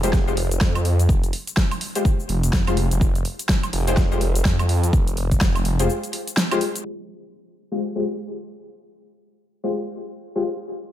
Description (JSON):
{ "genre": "bass house", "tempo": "125 BPM", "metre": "4/4", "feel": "swing 60% on 16ths", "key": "F minor", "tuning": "A4 = 440 Hz", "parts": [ { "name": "orchestra-hit-like synth stab", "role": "stabs", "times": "0.0-10.4 s", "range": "Ab3 to C5", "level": "-26 LUFS", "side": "left 3 dB", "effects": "built-in reverb, sidechain pumping, digital delay" }, { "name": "phased detuned saw bass", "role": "bass", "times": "0.0-5.9 s", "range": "F1 to F2", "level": "-21 LUFS", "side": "equal", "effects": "phaser, overdrive, sidechain pumping" }, { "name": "big-room dance drum kit", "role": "drums", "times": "0.0-6.8 s", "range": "hi-hat, shaker, snare drum, woodblock", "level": "-26 LUFS", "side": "equal", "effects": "overdrive" }, { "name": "electronic kick drum", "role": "drums", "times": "0.1-5.5 s", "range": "none", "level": "-20 LUFS", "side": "equal", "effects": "none" } ], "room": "little or no reverb", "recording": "low-pass filter", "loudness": "-19 LUFS", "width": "side -12 dB against mid", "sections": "0.0-6.9 A section; 6.9-10.9 B section", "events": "break 5.9-6.9; filter sweep 6.9-10.9", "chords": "0.0 Fmadd9", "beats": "0.13 0.61 | 1.09 1.57 2.05 2.53 | 3.01 3.49 3.97 4.45 | 4.93 5.41 5.89 6.37 | 6.85 7.33 7.81 8.29 | 8.77 9.25 9.73 10.21" }